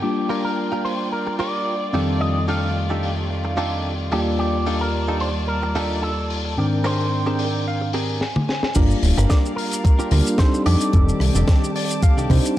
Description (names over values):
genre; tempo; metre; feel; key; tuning
nu-disco, nu disco; 110 BPM; 4/4; swing 54% on 16ths; G minor; A4 = 440 Hz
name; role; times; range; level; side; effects
electric guitar with an envelope filter; melody; 0.0-11.7 s; G4 to F5; -28 LUFS; equal; dub echo
barky tine electric piano; accompaniment; 0.0-12.5 s; Eb2 to A5; -23 LUFS; left 1 dB; phaser
muted studio string section; sustained chords; 0.0-12.6 s; Eb3 to D6; -32 LUFS; equal; sidechain pumping, low-pass filter
direct-recorded clean electric guitar; riff; 0.3-12.5 s; C4 to Ab5; -28 LUFS; right 2 dB; wide subtle chorus
tight funk drum kit; drums; 0.3-12.6 s; crash cymbal, hi-hat, rim click, shaker, snare drum, toms; -29 LUFS; left 2 dB; low-pass filter on hats, low-pass filter on toms, low-pass filter on cymbals, low-pass filter on snare, low-pass filter on perc, low-pass filter on room
fat analog bass; bass; 8.8-12.4 s; D1 to F2; -17 LUFS; equal; none
electronic kick drum; drums; 8.8-12.4 s; none; -16 LUFS; equal; none
room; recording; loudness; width
light reverb, studio ambience; dark, warm production; -18 LUFS; side -13 dB against mid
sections
0.0-8.8 A section; 8.8-12.6 B section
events
clean electric guitar fill 7.1-8.8, 11.5-12.6; drum fill 8.2-8.8; drop 8.8-12.6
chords
0.0 Gm7; 1.9 F13; 4.1 Ebmaj9#11; 6.6 Abmaj9#11; 8.8 Gm7; 10.7 F13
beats
| 0.03 0.58 1.12 1.67 | 2.21 2.76 3.30 3.85 | 4.39 4.94 5.49 6.03 | 6.58 7.12 7.67 8.21 | 8.76 9.30 9.85 10.39 | 10.94 11.48 12.03 12.58